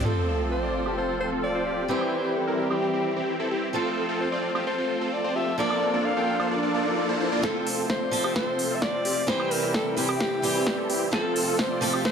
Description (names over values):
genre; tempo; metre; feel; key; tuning
EDM, festival progressive house; 130 BPM; 4/4; straight; F major; A4 = 440 Hz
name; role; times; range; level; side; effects
picked swing-style acoustic guitar; accompaniment; 0.0-12.1 s; E3 to A4; -32 LUFS; right 4 dB; sidechain pumping
dark studio string section; sustained chords; 0.0-12.1 s; C3 to A4; -35 LUFS; left 2 dB; sidechain pumping, low-pass filter
supersaw chords; riff; 0.0-12.1 s; Bb3 to G5; -27 LUFS; equal; cassette tape, sidechain pumping, low-pass filter, ping-pong delay
saturated sub bass; bass; 0.0, 7.4-12.1 s; none; barely audible; none; none
clear alto saxophone; melody; 0.1-12.1 s; G4 to F5; -30 LUFS; left 1 dB; ping-pong delay
big-room dance drum kit; drums; 0.1-12.1 s; hi-hat, shaker, snare drum, woodblock; -30 LUFS; equal; low-pass filter on hats, low-pass filter on cymbals, low-pass filter on perc, low-pass filter on snare, low-pass filter on toms, low-pass filter on room
sub drop and riser; sound effects; 0.1-7.4 s; none; -33 LUFS; left 1 dB; none
electronic kick drum; drums; 7.4-12.1 s; none; -33 LUFS; equal; high-pass filter on kick, high-pass filter on room
room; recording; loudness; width
light reverb, digital ambience; none; -23 LUFS; side -7 dB against mid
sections
0.1-7.4 A section; 7.4-12.1 B section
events
impact 0.1-1.9; riser 4.7-7.4; build-up 7.4-12.1; drum fill 7.4-12.1; filter sweep on string section 7.4-12.1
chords
0.1 F; 1.9 C; 3.7 F; 5.6 Bbmaj7; 7.4 F; 9.3 C; 11.1 F